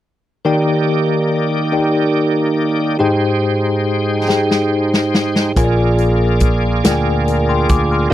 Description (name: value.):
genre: slow gospel.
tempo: 47 BPM (dotted quarters).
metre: 6/8.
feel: straight.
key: Eb major.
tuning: A4 = 438 Hz.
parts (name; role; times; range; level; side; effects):
bell-like tine electric piano; accompaniment; 0.4-8.1 s; Ab2 to F6; -16 LUFS; left 1 dB; medium stereo tremolo.
bright tonewheel organ; sustained chords; 0.4-8.1 s; Ab3 to G5; -19 LUFS; right 2 dB; slow rotary speaker, overdrive, chorus vibrato.
natural country drum kit; drums; 4.3-7.9 s; hi-hat, kick drum, snare drum; -16 LUFS; equal; none.
fingered electric bass; bass; 5.6-8.1 s; Bb1 to D2; -17 LUFS; equal; none.
room: little or no reverb.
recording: dry, close 1970s-style studio recording.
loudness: -13 LUFS.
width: side -13 dB against mid.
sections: 0.5-8.1 A section.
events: drum fill 4.3-5.6.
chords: 0.5 Ebmaj7; 3.0 Abmaj7; 5.6 Bb7.